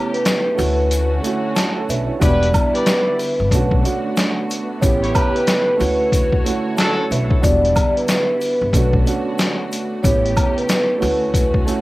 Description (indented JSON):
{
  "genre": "hip hop, boom-bap hip-hop",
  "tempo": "92 BPM",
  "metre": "4/4",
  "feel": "swing 62% on 16ths",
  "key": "E dorian",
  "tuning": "A4 = 439 Hz",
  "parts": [
    { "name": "vibraphone with soft mallets", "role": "melody", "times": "0.0-11.5 s", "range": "B4 to D5", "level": "-20 LUFS", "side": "equal", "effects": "high-pass filter, low-pass filter, cassette tape" },
    { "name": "dark concert grand piano", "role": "accompaniment", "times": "0.0-11.8 s", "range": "F#3 to A5", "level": "-23 LUFS", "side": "right 4 dB", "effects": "cassette tape, high-pass filter, low-pass filter" },
    { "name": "warm studio string section", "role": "sustained chords", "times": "0.0-11.8 s", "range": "C#3 to C#5", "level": "-28 LUFS", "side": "left 1 dB", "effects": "high-pass filter, low-pass filter, cassette tape" },
    { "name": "trip hop sampler-style drum kit", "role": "drums", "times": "0.1-11.8 s", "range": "hi-hat, kick drum, snare drum", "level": "-19 LUFS", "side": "left 1 dB", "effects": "cassette tape" },
    { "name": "egg shaker and woodblock", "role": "percussion", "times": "0.3-11.8 s", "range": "none", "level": "-29 LUFS", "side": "right 1 dB", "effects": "none" },
    { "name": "upright bass", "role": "bass", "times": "0.6-11.6 s", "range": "E1 to D2", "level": "-21 LUFS", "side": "left 1 dB", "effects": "none" },
    { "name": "clear horn section", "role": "stabs", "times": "2.2-7.0 s", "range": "D4 to D5", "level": "-25 LUFS", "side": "equal", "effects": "high-pass filter, low-pass filter, cassette tape, analog delay" }
  ],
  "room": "light reverb",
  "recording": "home recording on cassette",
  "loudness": "-15 LUFS",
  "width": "side -18 dB against mid",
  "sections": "0.0-11.8 A section",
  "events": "break 0.0-2.2",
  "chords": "0.0 A9; 0.6 Dmaj7; 2.2 Em7; 3.5 Bm7; 4.8 A9; 5.8 Dmaj7; 7.4 Em7; 8.7 Bm7; 10.0 A9; 11.0 Dmaj7"
}